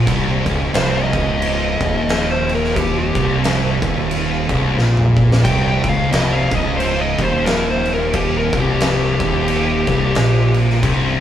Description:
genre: stoner and doom metal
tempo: 89 BPM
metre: 4/4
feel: swing 58% on 8ths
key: C minor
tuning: A4 = 440 Hz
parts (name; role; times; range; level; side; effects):
- thick fuzz guitar; riff; 0.0-11.2 s; C2 to Bb2; -20 LUFS; left 3 dB; distortion
- thick fuzz guitar; riff; 0.0-11.2 s; C2 to Bb2; -20 LUFS; right 3 dB; distortion
- growling fingered electric bass; bass; 0.0-11.2 s; C1 to Bb1; -25 LUFS; equal; overdrive
- oversized low-tuned drum kit; drums; 0.1-11.0 s; crash cymbal, kick drum, snare drum, toms; -20 LUFS; equal; none
- fuzz lead guitar; melody; 0.7-10.6 s; G4 to G5; -21 LUFS; equal; distortion
room: wet stone room reverb, RT60 1.2 s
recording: band playing live in one room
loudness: -14 LUFS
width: side -10 dB against mid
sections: 0.0-11.2 A section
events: lead electric guitar solo 0.0-11.2; drum fill 4.8-5.5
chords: 0.0 Cm

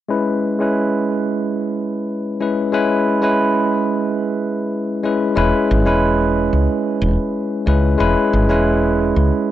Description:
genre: sunset chillout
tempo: 91 BPM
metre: 4/4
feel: straight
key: E major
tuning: A4 = 440 Hz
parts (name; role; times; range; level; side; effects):
- bell-like tine electric piano; accompaniment; 0.1-9.5 s; G#3 to B4; -16 LUFS; moving between left 5 dB and right 5 dB; auto-pan, low-pass filter, analog delay
- woody fretless electric bass; bass; 5.4-9.3 s; E1 to C#2; -17 LUFS; equal; none
room: light reverb, digital ambience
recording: dry, gritty hardware recording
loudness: -15 LUFS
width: side -13 dB against mid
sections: 0.1-5.4 A section; 5.4-9.5 B section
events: filter sweep on tine electric piano 0.1-5.4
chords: 0.1 E6

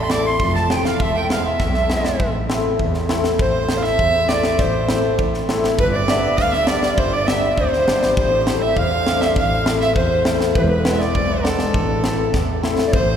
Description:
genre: klezmer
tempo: 101 BPM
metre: 2/4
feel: straight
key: A minor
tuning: A4 = 440 Hz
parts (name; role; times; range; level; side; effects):
- tenor recorder; melody; 0.0-13.2 s; A4 to C6; -22 LUFS; equal; none
- clear violin; second line; 0.0-13.2 s; A4 to D6; -24 LUFS; right 4 dB; none
- clear double bass; bass; 0.0-13.2 s; E1 to E2; -23 LUFS; equal; none
- hammered dulcimer; accompaniment; 0.1-12.8 s; G3 to E4; -22 LUFS; left 3 dB; none
- tight metal drum kit; drums; 0.1-13.1 s; kick drum, snare drum; -22 LUFS; equal; none
room: wet cathedral reverb, RT60 7.6 s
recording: recorded in a church or concert hall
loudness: -16 LUFS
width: side -8 dB against mid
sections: 0.0-3.4 A section; 3.4-12.9 B section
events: recorder solo 0.0-3.4; drum fill 12.3-12.9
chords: 0.0 Am; 1.0 E; 2.2 Am; 5.8 G; 8.2 Am; 10.6 E; 11.7 Am

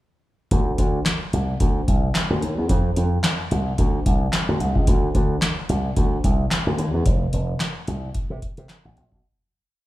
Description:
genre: early-eighties boogie funk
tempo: 110 BPM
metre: 4/4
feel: swing 56% on 16ths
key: unclear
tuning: A4 = 440 Hz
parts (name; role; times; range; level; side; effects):
- slap bass with an envelope filter; bass; 0.5-9.2 s; F1 to C3; -21 LUFS; equal; none
- booming analog drum machine; drums; 0.5-9.3 s; handclaps, hi-hat, kick drum, snare drum; -22 LUFS; equal; overdrive
room: little or no reverb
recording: live gig heard through the venue's PA, club reverb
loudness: -19 LUFS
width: side -16 dB against mid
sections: 0.5-9.2 breakdown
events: fade-out 7.1-9.2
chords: none

